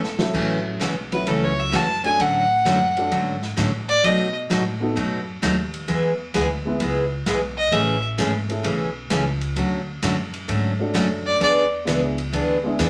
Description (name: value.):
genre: country, western swing.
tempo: 130 BPM.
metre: 4/4.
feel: swing 67% on 8ths.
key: A major.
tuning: A4 = 440 Hz.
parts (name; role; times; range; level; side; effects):
clear fiddle; melody; 0.0-4.3, 7.6-8.0, 11.3-11.6 s; A4 to A5; -23 LUFS; equal; none.
upright bass; bass; 0.0-12.9 s; E1 to B2; -31 LUFS; equal; none.
swinging big-band drum kit; drums; 0.0-12.9 s; crash cymbal, hi-hat, kick drum, ride cymbal, snare drum; -33 LUFS; equal; none.
dark upright piano; accompaniment; 0.2-12.8 s; F#3 to B4; -28 LUFS; equal; none.
picked steel-string acoustic guitar; accompaniment; 0.3-12.9 s; B2 to G#4; -26 LUFS; equal; none.
room: wet studio reverb, RT60 0.6 s.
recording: none.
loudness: -22 LUFS.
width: mono.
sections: 0.3-12.9 A section.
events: drum fill 0.0-0.3; fiddle solo 0.3-12.9.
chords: 0.3 A6; 2.2 Dmaj7; 4.0 B7; 5.9 E; 7.7 Amaj7; 9.6 Dmaj7; 11.4 E7.